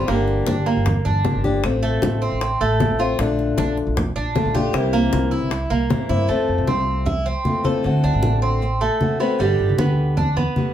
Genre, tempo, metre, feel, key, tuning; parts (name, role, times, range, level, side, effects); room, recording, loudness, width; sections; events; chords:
latin, Cuban son and guajira; 155 BPM; 4/4; straight; F major; A4 = 440 Hz
picked old ladder-braced acoustic guitar; accompaniment; 0.0-10.7 s; B2 to G4; -23 LUFS; left 4 dB
Cuban tres; arpeggios; 0.0-10.7 s; G3 to A4; -23 LUFS; right 3 dB
upright bass; bass; 0.0-10.4 s; G1 to A2; -22 LUFS; equal
bongos; percussion; 0.1-6.3 s; -28 LUFS; left 4 dB
congas; percussion; 0.1-10.7 s; -25 LUFS; left 1 dB
wet studio ambience, RT60 0.5 s; heard from further back in the room; -17 LUFS; side -10 dB against mid
0.0-6.3 A section; 6.3-10.7 B section
0.1 Gm7; 1.6 Fmaj7/A; 3.2 Bbmaj7; 4.7 C7; 6.3 Fmaj7; 7.8 D7; 9.4 G